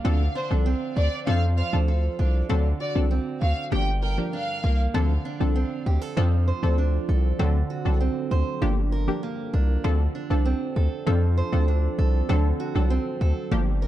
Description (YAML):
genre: dancehall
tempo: 98 BPM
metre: 4/4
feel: straight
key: D minor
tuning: A4 = 437 Hz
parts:
  - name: punchy chord stab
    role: accompaniment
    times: 0.0-13.7 s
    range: F3 to A4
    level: -30 LUFS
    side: equal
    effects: chorus
  - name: picked acoustic archtop guitar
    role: arpeggios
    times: 0.0-13.9 s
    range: G2 to C5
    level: -31 LUFS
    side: right 6 dB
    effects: none
  - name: hard-hitting 808-style bass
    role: bass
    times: 0.0-13.9 s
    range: G1 to F2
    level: -22 LUFS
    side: equal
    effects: none
  - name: warm studio violin section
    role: melody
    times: 0.4-4.8 s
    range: C5 to G5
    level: -32 LUFS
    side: equal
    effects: digital delay
  - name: deep dark ambient pad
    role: sustained chords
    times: 6.0-13.9 s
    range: F3 to A4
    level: -34 LUFS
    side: right 1 dB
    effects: chorus, built-in reverb
room: light reverb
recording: dark, warm production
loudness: -21 LUFS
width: side -13 dB against mid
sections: 0.0-4.9 A section; 4.9-13.9 B section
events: none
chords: 0.0 Dm7; 2.5 D7; 3.7 Gm7; 4.9 Dm7; 6.2 F6; 7.4 D7; 8.6 Gm7; 9.8 Dm7; 12.3 D7